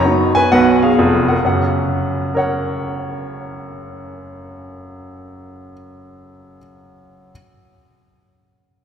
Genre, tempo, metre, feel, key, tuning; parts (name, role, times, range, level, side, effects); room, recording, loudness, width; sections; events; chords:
jazz, stride piano; 131 BPM; 4/4; swing 64% on 8ths; F# major; A4 = 440 Hz
clear baby grand piano; solo; 0.0-7.3 s; E#1 to A#5; -16 LUFS; equal
wet church reverb, RT60 3.9 s; recorded in a church or concert hall; -14 LUFS; side -8 dB against mid
0.0-1.4 A section; 1.4-5.1 B section
0.0 B/F#; 1.4 F#